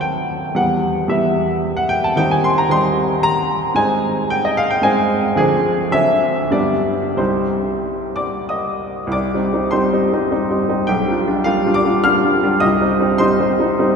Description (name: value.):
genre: classical, romantic character piece for solo piano.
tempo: 90-115 BPM.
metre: 3/4.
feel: rubato.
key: C minor.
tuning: A4 = 440 Hz.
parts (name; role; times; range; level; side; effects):
clear baby grand piano; solo; 0.0-14.0 s; B1 to F6; -15 LUFS; equal; none.
room: wet cathedral reverb, RT60 5.5 s.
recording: recorded in a church or concert hall.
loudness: -15 LUFS.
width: side -6 dB against mid.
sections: 0.0-9.1 A section; 9.1-14.0 B section.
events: none.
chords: 0.0 D#dim7; 0.6 Em; 2.2 Cm/Eb; 3.8 Ab; 5.4 Dm7b5; 5.9 D7; 6.5 G; 7.2 Cm; 10.9 G7(no3); 12.6 Cm.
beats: 0.04 | 0.58 1.11 1.64 | 2.18 2.71 3.24 | 3.77 4.31 4.85 | 5.38 5.93 6.53 | 7.19 7.84 8.49 | 9.12 9.72 10.31 | 10.88 11.47 12.05 | 12.62 13.20 13.80.